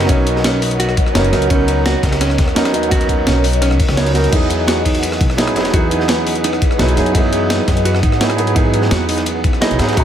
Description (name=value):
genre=liquid drum and bass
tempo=170 BPM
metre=4/4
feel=straight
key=E lydian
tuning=A4 = 440 Hz
part: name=felt-muted upright piano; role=accompaniment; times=0.0-10.0 s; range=E3 to A#5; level=-18 LUFS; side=right 2 dB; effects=ping-pong delay
part: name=ethereal airy pad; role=sustained chords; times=0.0-10.0 s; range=G#4 to A#5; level=-24 LUFS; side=left 1 dB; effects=ensemble chorus, built-in reverb, phaser
part: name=upright bass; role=bass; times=0.0-10.0 s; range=E1 to G#2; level=-19 LUFS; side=left 1 dB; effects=none
part: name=breakbeat sampler-style drum kit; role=drums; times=0.0-10.0 s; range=crash cymbal, hi-hat, rim click, snare drum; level=-21 LUFS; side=equal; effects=none
part: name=crunchy breakbeat drum kit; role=drums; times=0.0-10.0 s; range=hi-hat, ride cymbal, snare drum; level=-26 LUFS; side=left 1 dB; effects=high-pass filter on cymbals, high-pass filter on hats, high-pass filter on snare, high-pass filter on room
part: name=mellow electric guitar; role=arpeggios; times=0.1-10.0 s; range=C#4 to D#5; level=-22 LUFS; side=right 3 dB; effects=tape echo
part: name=electronic kick drum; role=drums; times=0.1-10.0 s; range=none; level=-16 LUFS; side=left 1 dB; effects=none
room=light reverb, small room ambience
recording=none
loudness=-12 LUFS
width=side -10 dB against mid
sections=0.0-10.0 A section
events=none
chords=0.0 Bmaj9; 4.3 Emaj9